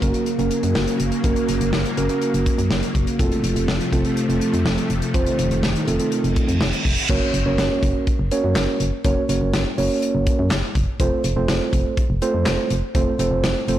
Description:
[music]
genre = synth-pop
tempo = 123 BPM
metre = 4/4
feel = straight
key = unclear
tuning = A4 = 440 Hz
[part]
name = muted felt-like synth keys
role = accompaniment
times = 0.0-13.8 s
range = A3 to Db5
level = -22 LUFS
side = right 3 dB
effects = chorus
[part]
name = string machine, violas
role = sustained chords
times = 0.0-7.1 s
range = C3 to Bb3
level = -24 LUFS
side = left 1 dB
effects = ensemble chorus
[part]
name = solid FM bass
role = bass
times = 0.0-13.8 s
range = F1 to Gb2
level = -23 LUFS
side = equal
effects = tube saturation
[part]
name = modern studio drum kit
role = drums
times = 0.0-13.8 s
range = crash cymbal, handclaps, hi-hat, kick drum, snare drum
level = -23 LUFS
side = left 1 dB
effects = none
[part]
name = reverse cymbal and impact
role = sound effects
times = 6.4-9.0 s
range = none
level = -27 LUFS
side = right 1 dB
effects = none
[sound]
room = light reverb, small room ambience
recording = blown-out, overdriven recording, overdrive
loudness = -18 LUFS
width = side -12 dB against mid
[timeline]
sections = 0.0-7.1 A section; 7.1-13.8 B section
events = reverse cymbal 6.4-7.1; impact 7.1-9.0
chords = 0.0 Gb; 3.2 F; 7.1 Gb; 11.0 F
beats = 0.27 0.75 | 1.24 1.73 2.22 2.71 | 3.19 3.68 4.17 4.66 | 5.14 5.63 6.12 6.61 | 7.10 7.58 8.07 8.56 | 9.05 9.54 10.02 10.51 | 11.00 11.49 11.97 12.46 | 12.95 13.44

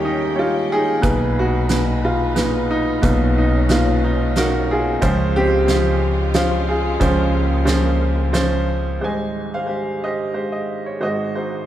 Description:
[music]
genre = acoustic folk-pop ballad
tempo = 90 BPM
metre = 3/4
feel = straight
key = unclear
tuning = A4 = 440 Hz
[part]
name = clear upright piano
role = melody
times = 0.0-11.7 s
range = Ab1 to Ab5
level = -19 LUFS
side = equal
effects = none
[part]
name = dark chamber string section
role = sustained chords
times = 0.0-9.0 s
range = Db3 to G5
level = -28 LUFS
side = left 1 dB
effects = none
[part]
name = upright bass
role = bass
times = 0.0-9.0 s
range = B1 to Eb2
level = -21 LUFS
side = equal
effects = none
[part]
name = loose indie drum kit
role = drums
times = 1.0-8.5 s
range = hi-hat, kick drum, snare drum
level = -24 LUFS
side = right 1 dB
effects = none
[sound]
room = moderate concert hall reverb, RT60 2.5 s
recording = recorded in a church or concert hall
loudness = -16 LUFS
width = side -12 dB against mid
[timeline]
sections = 0.0-9.0 A section; 9.0-11.7 B section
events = none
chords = 0.0 Eb7; 1.0 Bmaj7; 5.0 Dbmaj7; 9.0 Abmaj7; 11.0 Ab7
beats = 0.37 | 1.03 1.70 2.37 | 3.03 3.69 4.36 | 5.02 5.68 6.34 | 7.00 7.67 8.34 | 9.01 9.68 10.35 | 11.01

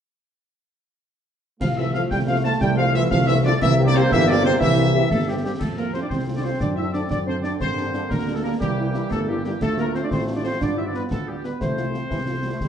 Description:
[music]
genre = military-style march for wind band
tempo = 120 BPM (dotted quarters)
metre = 6/8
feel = straight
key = F major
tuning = A4 = 441 Hz
[part]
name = mellow trumpet section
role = melody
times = 1.6-12.7 s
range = G4 to A5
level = -29 LUFS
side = left 3 dB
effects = none
[part]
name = clear woodwind section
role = second line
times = 1.6-12.7 s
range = G4 to A5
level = -31 LUFS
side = left 2 dB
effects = none
[part]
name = mellow euphonium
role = second line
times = 1.6-12.7 s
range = C3 to E4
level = -26 LUFS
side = right 3 dB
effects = none
[part]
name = mellow hollow flute section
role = second line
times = 1.6-5.4 s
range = C5 to A5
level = -27 LUFS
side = equal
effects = none
[part]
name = bright trombone section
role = sustained chords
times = 1.6-12.7 s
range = C3 to C4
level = -30 LUFS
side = right 2 dB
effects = none
[part]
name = dark tuba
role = bass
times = 1.6-12.7 s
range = G1 to G2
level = -24 LUFS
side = equal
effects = none
[part]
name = concert snare drum, clash cymbals and concert bass drum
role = drums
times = 1.6-12.7 s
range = none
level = -28 LUFS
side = left 1 dB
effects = none
[part]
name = dark French horn section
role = accompaniment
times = 1.8-12.5 s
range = F3 to G4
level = -30 LUFS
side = left 3 dB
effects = none
[sound]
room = wet large studio reverb, RT60 1.0 s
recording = heard from further back in the room, nothing above 10.4 kHz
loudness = -19 LUFS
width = side -8 dB against mid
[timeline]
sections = 1.6-5.6 A section; 5.6-12.7 B section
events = none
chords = 1.6 F/C; 3.6 C7; 5.6 F; 6.6 D7/F#; 7.6 Gm; 8.6 C7; 9.6 Dm; 10.6 G7; 11.6 F/C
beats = | 1.61 2.11 | 2.61 3.11 | 3.61 4.11 | 4.61 5.11 | 5.61 6.11 | 6.61 7.11 | 7.61 8.11 | 8.61 9.11 | 9.61 10.11 | 10.61 11.11 | 11.61 12.11 | 12.61

